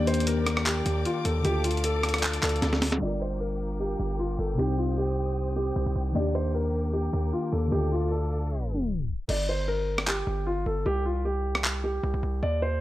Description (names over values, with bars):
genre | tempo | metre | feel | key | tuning
hip hop, trap | 153 BPM | 4/4 | half-time | G minor | A4 = 442 Hz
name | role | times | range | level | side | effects
dark concert grand piano | melody | 0.0-12.8 s | F4 to D5 | -30 LUFS | equal | low-pass filter
muted felt-like synth keys | accompaniment | 0.0-9.3 s | C3 to Bb4 | -31 LUFS | left 2 dB | chorus, low-pass filter
muted symphonic string section | sustained chords | 0.0-9.3 s | A4 to Eb6 | -38 LUFS | left 2 dB | none
hard-hitting 808-style bass | bass | 0.0-12.8 s | G1 to F2 | -29 LUFS | equal | none
breakbeat sampler-style drum kit | drums | 0.1-3.0, 9.3-11.7 s | crash cymbal, handclaps, hi-hat, rim click, snare drum | -29 LUFS | equal | vintage 12-bit sampler grit
room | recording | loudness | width
light reverb, digital ambience | low-pass filter, tape stop | -25 LUFS | side -15 dB against mid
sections
0.0-3.0 A section; 3.0-9.3 B section; 9.3-12.8 C section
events
drum fill 2.6-3.0; filter sweep 3.0-9.3; tape stop 8.5-9.3; hi-hats muted 9.3-12.8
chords
0.0 Ebmaj7; 1.4 Dm; 3.0 Gm7; 4.6 Cm; 6.2 Ebmaj7; 7.7 Dm; 9.3 Gm; 10.9 C5